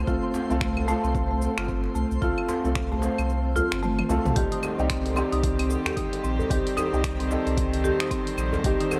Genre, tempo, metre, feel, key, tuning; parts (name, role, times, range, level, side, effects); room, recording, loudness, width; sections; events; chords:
organic downtempo; 112 BPM; 4/4; swing 60% on 16ths; C dorian; A4 = 440 Hz
felt-muted upright piano; accompaniment; 0.0-9.0 s; G3 to C5; -32 LUFS; equal; sidechain pumping, tape echo, shimmer reverb
warm sub bass; bass; 0.0-8.7 s; G1 to C2; -30 LUFS; equal; sidechain pumping
twinkling granular texture; texture; 0.0-4.4 s; C4 to C5; -42 LUFS; equal; built-in reverb, shimmer reverb
marimba with medium hard mallets; arpeggios; 0.1-8.9 s; A3 to G4; -31 LUFS; equal; tape echo, shimmer reverb
deep house drum kit; drums; 0.1-9.0 s; cabasa, claves, finger snaps, hi-hat, toms; -35 LUFS; equal
electronic kick drum; drums; 0.1-8.8 s; -33 LUFS; equal
djembe; percussion; 0.3-9.0 s; -38 LUFS; equal
clear studio string section; sustained chords; 4.4-9.0 s; Eb3 to C5; -35 LUFS; equal; sidechain pumping, shimmer reverb
light reverb, small room ambience; -25 LUFS; mono
0.0-4.4 A section; 4.4-9.0 B section
filter sweep on marimba 0.0-4.4; kick drops out 3.3-4.4; drum fill 3.6-4.4
0.0 F; 4.4 Cm